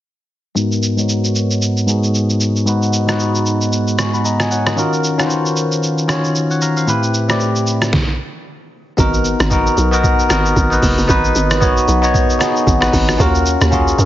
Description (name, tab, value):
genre	amapiano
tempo	114 BPM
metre	4/4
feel	swing 58% on 16ths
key	G# minor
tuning	A4 = 440 Hz
part	bell-like tine electric piano	accompaniment	0.5-14.1 s	G#2 to C#6	-15 LUFS	left 1 dB	phaser, low-pass filter
part	trip hop sampler-style drum kit	drums	0.6-14.1 s	hi-hat, kick drum, rim click, shaker, snare drum	-18 LUFS	right 1 dB	overdrive, vintage 12-bit sampler grit
part	hollow log drum bass	bass	9.0-14.1 s	F#1 to F#2	-17 LUFS	right 1 dB	none
room	little or no reverb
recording	heavily compressed radio sound, nothing above 7.6 kHz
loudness	-13 LUFS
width	side -13 dB against mid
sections	0.6-9.0 A section; 9.0-14.1 B section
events	filter sweep on tine electric piano 0.6-9.0; stop 7.9-9.0; drop 9.0-14.1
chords	0.6 G#m9; 4.8 D#m9; 6.9 Am9; 9.0 G#m9; 13.2 D#m9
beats	| 0.56 1.09 1.62 2.14 | 2.67 3.19 3.72 4.25 | 4.77 5.30 5.83 6.35 | 6.88 7.41 7.93 8.46 | 8.98 9.51 10.04 10.56 | 11.09 11.62 12.14 12.67 | 13.20 13.72